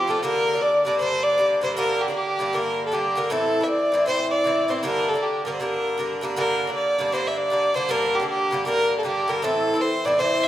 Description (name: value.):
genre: celtic folk, Celtic hornpipe.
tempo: 157 BPM.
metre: 4/4.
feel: swing 63% on 8ths.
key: G dorian.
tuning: A4 = 437 Hz.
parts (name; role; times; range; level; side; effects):
warm fiddle; melody; 0.0-10.5 s; G4 to E5; -21 LUFS; equal; none.
Irish bouzouki; accompaniment; 0.0-10.5 s; G2 to F4; -26 LUFS; right 1 dB; none.
room: wet recital hall reverb, RT60 1.5 s.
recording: none.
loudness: -20 LUFS.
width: side -12 dB against mid.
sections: 0.0-6.4 A section; 6.4-10.5 A section.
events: none.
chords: 0.2 Gm; 3.3 Am; 4.8 Gm; 9.4 Am.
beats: | 0.23 0.61 1.00 1.38 | 1.77 2.15 2.53 2.92 | 3.30 3.68 4.07 4.45 | 4.83 5.22 5.60 5.98 | 6.37 6.75 7.13 7.51 | 7.89 8.28 8.66 9.04 | 9.43 9.81 10.19.